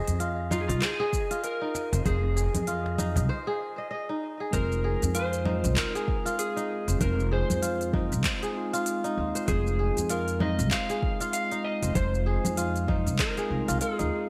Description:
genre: organic downtempo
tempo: 97 BPM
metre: 4/4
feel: swing 59% on 16ths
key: F minor pentatonic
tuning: A4 = 439 Hz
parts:
  - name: kora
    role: arpeggios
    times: 0.0-14.3 s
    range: Eb4 to Eb5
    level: -35 LUFS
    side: equal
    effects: delay
  - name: wind-like tuned noise texture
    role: texture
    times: 0.0-3.3 s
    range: Eb5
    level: -48 LUFS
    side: equal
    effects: none
  - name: upright bass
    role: bass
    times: 0.1-14.1 s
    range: F1 to F2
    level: -31 LUFS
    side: equal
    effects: tube saturation
  - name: organic electronic drum kit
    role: drums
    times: 0.1-14.1 s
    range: congas, handclaps, hi-hat, shaker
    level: -34 LUFS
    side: equal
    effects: studio ambience, gated reverb
  - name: electric slide guitar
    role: melody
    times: 0.5-14.3 s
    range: F4 to F5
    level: -35 LUFS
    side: equal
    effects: delay
  - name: cajon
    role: percussion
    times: 0.7-3.3 s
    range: none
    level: -34 LUFS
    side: equal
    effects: none
  - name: electronic kick drum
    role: drums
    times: 1.1-13.3 s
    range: none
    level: -33 LUFS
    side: equal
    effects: studio ambience
  - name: bell-like tine electric piano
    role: accompaniment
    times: 4.5-14.3 s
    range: Ab3 to F4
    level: -37 LUFS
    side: equal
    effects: lush chorus, sidechain pumping
room: light reverb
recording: bright 1980s-style digital production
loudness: -28 LUFS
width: mono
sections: 0.0-4.5 A section; 4.5-14.3 B section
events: break 3.3-4.5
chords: 0.0 Fm7

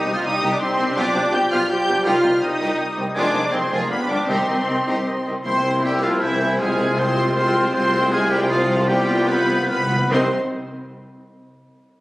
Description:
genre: classical, dramatic, fast romantic movement for symphony orchestra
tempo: 134-166 BPM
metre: 3/4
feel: rubato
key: C minor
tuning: A4 = 441 Hz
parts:
  - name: rich symphonic violin section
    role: melody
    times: 0.0-10.3 s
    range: E5 to G6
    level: -27 LUFS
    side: left 1 dB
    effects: none
  - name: clear symphonic violin section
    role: second line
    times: 0.0-10.3 s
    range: G3 to C5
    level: -28 LUFS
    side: left 1 dB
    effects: none
  - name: rich symphonic viola section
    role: accompaniment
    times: 0.0-10.3 s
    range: Ab3 to G4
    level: -23 LUFS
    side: equal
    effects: none
  - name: mellow French horn section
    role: sustained chords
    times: 0.0-10.3 s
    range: Eb3 to F4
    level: -26 LUFS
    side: left 1 dB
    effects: none
  - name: mellow trumpet section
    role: stabs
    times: 0.0-5.3 s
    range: G4 to Ab4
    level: -30 LUFS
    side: equal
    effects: none
  - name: clear symphonic double bass section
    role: bass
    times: 0.0-10.3 s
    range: F1 to C2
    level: -31 LUFS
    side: equal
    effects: none
  - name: hollow concert flute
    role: second line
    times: 0.1-10.3 s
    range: Bb4 to G6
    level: -28 LUFS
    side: equal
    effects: none
  - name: mellow tuba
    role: bass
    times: 0.1-10.3 s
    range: F1 to C2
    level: -29 LUFS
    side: equal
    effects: none
  - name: rich studio cello section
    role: bass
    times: 0.1-10.3 s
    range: F2 to C3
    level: -29 LUFS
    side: right 1 dB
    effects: none
  - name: warm oboe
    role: second line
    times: 1.0-10.3 s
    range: E4 to Ab5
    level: -27 LUFS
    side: right 1 dB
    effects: none
  - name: mellow bassoon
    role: accompaniment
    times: 1.0-5.4, 10.1-10.3 s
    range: D3 to F3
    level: -30 LUFS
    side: equal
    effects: none
  - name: timpani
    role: percussion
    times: 2.1-10.3 s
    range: C3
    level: -32 LUFS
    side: equal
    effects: none
room: moderate scoring stage reverb, RT60 1.6 s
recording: recorded on a phone in the room, club reverb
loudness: -17 LUFS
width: side -18 dB against mid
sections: 0.0-5.5 A section; 5.5-10.1 B section; 10.1-11.3 C section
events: slowing down 7.2-10.1; timpani fill 8.9-10.1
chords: 0.0 Cm; 1.0 G7/B; 2.1 Cm; 3.2 Fm7; 3.9 G7/D; 4.3 Cm; 5.5 C7; 6.6 Fm/C; 8.9 G7/C; 10.1 Cm

